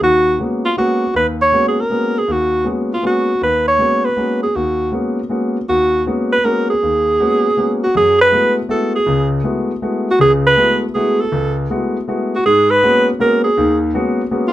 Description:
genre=jazz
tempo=159 BPM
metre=3/4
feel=swing 66% on 8ths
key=G# minor, F# dorian from 7.9 s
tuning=A4 = 440 Hz
part: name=warm alto saxophone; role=melody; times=0.0-14.5 s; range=E#4 to C#5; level=-14 LUFS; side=right 1 dB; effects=none
part: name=warm concert grand piano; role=accompaniment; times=0.0-14.5 s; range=C#2 to F#4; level=-18 LUFS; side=left 2 dB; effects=none
room=moderate studio reverb, RT60 0.5 s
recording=none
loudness=-13 LUFS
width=side -14 dB against mid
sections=0.0-7.9 A section; 7.9-14.5 B section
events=none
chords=0.0 G#m11; 7.9 F#m11; 12.4 G#m11

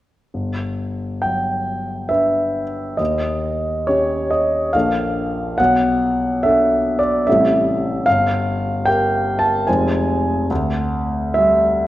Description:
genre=classical, impressionist solo piano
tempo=65-76 BPM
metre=3/4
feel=rubato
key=unclear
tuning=A4 = 440 Hz
part: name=clear grand piano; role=solo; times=0.3-11.9 s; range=F1 to A5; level=-16 LUFS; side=equal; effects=none
room=wet recital hall reverb, RT60 1.5 s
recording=worn, warbling old tape, cassette tape, warbly pitch drift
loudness=-16 LUFS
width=side -15 dB against mid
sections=0.3-11.9 A section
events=none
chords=0.3 Gmaj7; 3.0 Eb7; 4.7 Bbmaj7; 5.6 Bm7; 7.3 Am7; 8.1 Gm7; 9.7 Fm7; 10.5 Dsus4

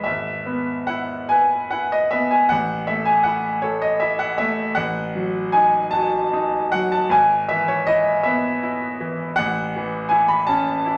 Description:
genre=classical, romantic nocturne for solo piano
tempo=46-55 BPM (dotted quarters)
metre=6/8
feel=rubato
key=E major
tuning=A4 = 441 Hz
part: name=bright concert grand piano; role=solo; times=0.0-11.0 s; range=G#1 to B5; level=-20 LUFS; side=equal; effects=none
room=wet stone room reverb, RT60 0.9 s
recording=none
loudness=-20 LUFS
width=mono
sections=0.1-11.0 A section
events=none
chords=0.1 E/G#; 2.5 A5; 4.8 F#m69/A; 7.1 E/G#; 9.4 A

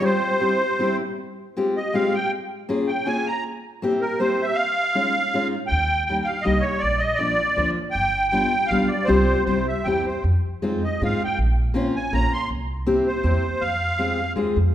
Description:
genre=musette waltz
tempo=159 BPM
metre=3/4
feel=rubato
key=F minor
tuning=A4 = 440 Hz
part: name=musette accordion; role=melody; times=0.0-14.3 s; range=Bb4 to C6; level=-23 LUFS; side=right 1 dB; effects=none
part: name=fingerpicked steel-string acoustic guitar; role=accompaniment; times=0.0-14.6 s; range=F3 to Ab4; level=-24 LUFS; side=left 2 dB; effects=none
part: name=upright bass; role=bass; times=5.7-14.7 s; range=G1 to Ab2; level=-24 LUFS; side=right 1 dB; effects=none
room=wet recital hall reverb, RT60 1.5 s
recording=recorded in a church or concert hall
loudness=-20 LUFS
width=side -11 dB against mid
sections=0.0-14.7 A section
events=none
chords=0.0 Csus4; 0.4 C; 1.2 Fmadd9; 2.3 Bbm7; 3.5 C7; 4.6 Dbadd9; 5.7 Eb; 6.8 Bb; 8.0 G7; 9.1 Csus4; 9.5 C; 10.2 Fm7; 11.4 Bbmadd9; 12.5 C7; 13.6 Fm

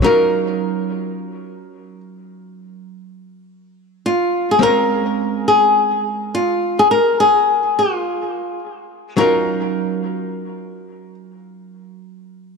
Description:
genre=sunset chillout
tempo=105 BPM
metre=4/4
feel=swing 57% on 16ths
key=Eb minor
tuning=A4 = 443 Hz
part: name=flamenco guitar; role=melody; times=0.0-11.1 s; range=F4 to Bb4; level=-16 LUFS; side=left 1 dB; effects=analog delay
part: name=archtop guitar, miked and amplified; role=accompaniment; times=0.0-12.6 s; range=Gb3 to Bb4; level=-22 LUFS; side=moving between left 1 dB and right 8 dB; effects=auto-pan, analog delay
room=moderate lush hall reverb, RT60 2.2 s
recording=dry, gritty hardware recording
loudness=-15 LUFS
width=side -4 dB against mid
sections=0.0-12.6 A section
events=none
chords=0.0 Ebm9; 4.6 Bbm9; 9.2 Ebm9

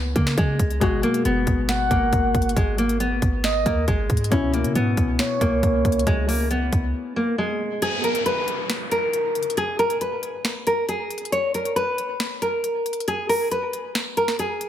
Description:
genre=hip hop, trap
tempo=137 BPM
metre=4/4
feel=half-time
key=unclear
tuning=A4 = 440 Hz
part: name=nylon-string guitar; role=melody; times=0.0-14.7 s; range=G#3 to C#5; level=-23 LUFS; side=equal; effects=low-pass filter, diffuse ambient delay
part: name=felt-muted upright piano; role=accompaniment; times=0.0-7.8 s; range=B2 to F#4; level=-30 LUFS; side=left 6 dB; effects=low-pass filter
part: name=clean 808-style bass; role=bass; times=0.0-6.9 s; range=F#1 to C#3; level=-24 LUFS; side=equal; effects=none
part: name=trap drum kit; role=drums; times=0.2-14.7 s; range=hi-hat, kick drum, snare drum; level=-25 LUFS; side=equal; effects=none
part: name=gliding portamento lead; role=second line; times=1.7-6.0 s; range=C#5 to F#5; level=-26 LUFS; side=right 2 dB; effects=chorus, diffuse ambient delay
part: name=downlifter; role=sound effects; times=7.8-11.3 s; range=none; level=-30 LUFS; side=right 2 dB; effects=none
room=moderate plate reverb, RT60 1.4 s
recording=dreamy mix soaked in reverb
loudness=-20 LUFS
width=side -10 dB against mid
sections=0.0-7.8 A section; 7.8-14.7 B section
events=break 6.9-7.8, 7.8-14.7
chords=0.0 C#m7; 0.8 G#m7; 4.3 C#m7; 7.8 N.C.

